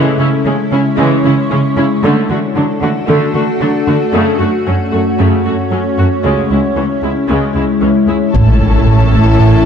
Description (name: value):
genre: cinematic, hybrid orchestral and electronic film score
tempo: 114 BPM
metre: 4/4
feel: straight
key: C# phrygian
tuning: A4 = 440 Hz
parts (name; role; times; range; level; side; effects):
- clear symphonic viola section; accompaniment; 0.0-9.7 s; C#3 to F#4; -17 LUFS; right 1 dB; none
- evolving wavetable pad; sustained chords; 0.0-9.7 s; G#3 to C#5; -15 LUFS; left 2 dB; chorus, built-in reverb
- rich symphonic cello section; bass; 0.2-9.7 s; C#2 to D3; -16 LUFS; right 2 dB; none
- warm symphonic violin section; second line; 8.3-9.7 s; A4 to A5; -19 LUFS; left 6 dB; none
- round analog bass; riff; 8.3-9.6 s; A2 to A3; -11 LUFS; right 2 dB; none
- pure sine sub bass; bass; 8.3-9.7 s; A1; -15 LUFS; left 1 dB; none
- rich symphonic double bass section; bass; 8.3-9.7 s; A1; -16 LUFS; right 3 dB; none
- taiko ensemble; drums; 8.3-9.4 s; none; -20 LUFS; left 1 dB; none
- impact; sound effects; 8.3-9.7 s; none; -20 LUFS; left 1 dB; none
- dark French horn section; sustained chords; 8.4-9.7 s; C#4 to E4; -17 LUFS; left 6 dB; none
room: moderate scoring stage reverb, RT60 1.6 s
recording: dark, warm production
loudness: -10 LUFS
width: side -7 dB against mid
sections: 0.0-8.3 A section; 8.3-9.7 B section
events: impact 8.3-9.7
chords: 0.0 C#m; 2.0 D; 4.1 F#m; 6.2 C#m; 8.3 A